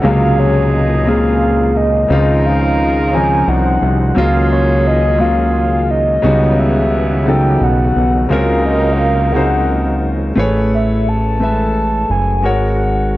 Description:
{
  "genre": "slow six-eight R&B",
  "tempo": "58 BPM (dotted quarters)",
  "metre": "6/8",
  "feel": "straight",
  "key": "unclear",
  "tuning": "A4 = 440 Hz",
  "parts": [
    { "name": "soft octave-layered synth lead", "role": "melody", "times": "0.0-13.2 s", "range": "Db5 to A5", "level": "-18 LUFS", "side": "equal", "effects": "chorus, phaser" },
    { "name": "warm concert grand piano", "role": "accompaniment", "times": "0.0-13.2 s", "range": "C3 to E5", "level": "-16 LUFS", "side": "left 1 dB", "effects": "none" },
    { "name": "tonewheel organ", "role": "sustained chords", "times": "0.0-10.3 s", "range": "Bb2 to C5", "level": "-24 LUFS", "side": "right 1 dB", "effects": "none" },
    { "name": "clear horn section", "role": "stabs", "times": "0.0-10.0 s", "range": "C3 to Bb4", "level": "-24 LUFS", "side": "right 2 dB", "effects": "none" },
    { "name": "fat analog bass", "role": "bass", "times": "0.0-13.2 s", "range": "Gb1 to Db2", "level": "-16 LUFS", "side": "equal", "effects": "none" }
  ],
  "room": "small room ambience",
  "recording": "dry, gritty hardware recording",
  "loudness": "-11 LUFS",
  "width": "side -16 dB against mid",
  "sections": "0.0-10.4 A section; 10.4-13.2 B section",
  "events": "none",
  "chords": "0.0 Ab13/Db; 2.1 Dbmaj9; 4.2 Gbmaj9/Db; 6.2 Eb7alt/Db; 8.3 Ab13/Db; 10.4 Amaj9; 12.4 Ab9sus4"
}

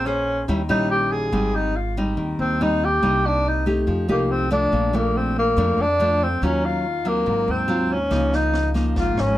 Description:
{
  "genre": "bossa nova",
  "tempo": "142 BPM",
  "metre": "4/4",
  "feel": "straight",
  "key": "unclear",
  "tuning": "A4 = 439 Hz",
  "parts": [
    { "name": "breathy tenor saxophone", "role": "melody", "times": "0.0-9.4 s", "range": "Bb3 to Ab4", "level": "-21 LUFS", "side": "left 1 dB", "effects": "none" },
    { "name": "nylon-string guitar", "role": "accompaniment", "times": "0.0-9.4 s", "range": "F2 to C5", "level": "-24 LUFS", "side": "equal", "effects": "none" },
    { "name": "upright bass", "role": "bass", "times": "0.0-9.4 s", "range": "Ab1 to F2", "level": "-25 LUFS", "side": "equal", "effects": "none" },
    { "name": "open jazz drum kit", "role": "drums", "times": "8.1-9.3 s", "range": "kick drum, rim click, snare drum", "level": "-30 LUFS", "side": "right 1 dB", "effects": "none" }
  ],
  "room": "light reverb",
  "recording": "none",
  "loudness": "-18 LUFS",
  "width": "side -14 dB against mid",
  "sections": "0.0-9.4 A section",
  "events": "none",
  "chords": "0.5 Eb7b9; 1.3 Abmaj7; 3.0 Cm7; 3.9 F9; 4.7 Bbmaj7; 6.4 Ebm9; 7.3 Ab6; 8.1 Db69"
}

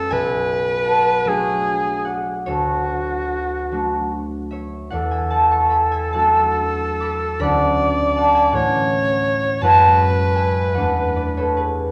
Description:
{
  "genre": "classical, impressionist duo for alto saxophone and harp",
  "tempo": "44-56 BPM (dotted quarters)",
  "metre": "6/8",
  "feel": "rubato",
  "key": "unclear",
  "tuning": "A4 = 436 Hz",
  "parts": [
    { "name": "clear alto saxophone", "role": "melody", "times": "0.0-11.7 s", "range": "F#4 to D5", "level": "-23 LUFS", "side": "equal", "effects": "none" },
    { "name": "concert harp", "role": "accompaniment", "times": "0.0-11.9 s", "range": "B1 to D6", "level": "-20 LUFS", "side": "equal", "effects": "none" }
  ],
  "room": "wet recital hall reverb, RT60 1.5 s",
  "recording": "recorded in a church or concert hall",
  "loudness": "-19 LUFS",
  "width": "mono",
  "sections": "0.0-11.9 A section",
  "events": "none",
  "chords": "0.1 Bm11; 2.5 Dmaj7; 4.9 E11; 7.4 Dmaj9; 8.5 A6; 9.6 F#m9; 10.8 E9sus4"
}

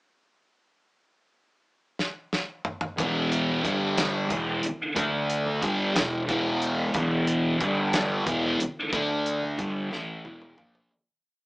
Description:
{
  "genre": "psychedelic rock",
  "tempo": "61 BPM (dotted quarters)",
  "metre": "6/8",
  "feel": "straight",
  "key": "unclear",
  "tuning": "A4 = 439 Hz",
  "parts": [
    { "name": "damped 70s drum kit", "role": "drums", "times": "2.0-10.9 s", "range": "hi-hat, kick drum, snare drum, toms", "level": "-29 LUFS", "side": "equal", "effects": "none" },
    { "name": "thick fuzz guitar", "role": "riff", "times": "3.0-10.9 s", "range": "E2 to D4", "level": "-25 LUFS", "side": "equal", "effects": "distortion, phaser" },
    { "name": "fuzz fingered electric bass", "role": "bass", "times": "3.0-10.9 s", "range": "E1 to D2", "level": "-32 LUFS", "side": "equal", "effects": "overdrive" },
    { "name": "congas", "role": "percussion", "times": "3.0-10.6 s", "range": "none", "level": "-37 LUFS", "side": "equal", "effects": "none" }
  ],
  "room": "moderate studio reverb, RT60 0.6 s",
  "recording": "band playing live in one room, small speaker sound",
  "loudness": "-24 LUFS",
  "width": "side -25 dB against mid",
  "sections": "1.0-3.0 pickup bar; 3.0-10.9 groove",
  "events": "drum fill 2.0-3.0, 9.9-10.9; fade-out 8.9-10.9",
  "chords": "1.0 N.C.; 3.0 E5; 3.6 G5; 4.3 E5; 5.0 D5; 5.6 E5; 7.6 G5; 8.3 E5; 8.9 D5; 9.6 E5"
}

